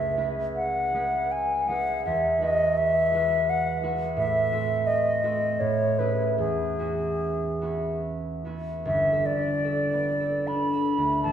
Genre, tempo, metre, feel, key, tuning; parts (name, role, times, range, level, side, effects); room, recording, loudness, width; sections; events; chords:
classical, impressionist duo for flute and harp; 69-87 BPM; 3/4; rubato; E major; A4 = 436 Hz
concert flute; melody; 0.0-11.3 s; G#4 to B5; -24 LUFS; equal
concert harp; accompaniment; 0.0-11.3 s; G1 to B4; -28 LUFS; equal
wet scoring stage reverb, RT60 2.0 s; heard from further back in the room; -23 LUFS; side -9 dB against mid
0.0-8.9 A section; 8.9-11.3 B section
0.0 C#m7; 2.1 Eadd9; 4.2 Am6; 5.6 Amaj7; 6.4 E69; 8.9 Gadd9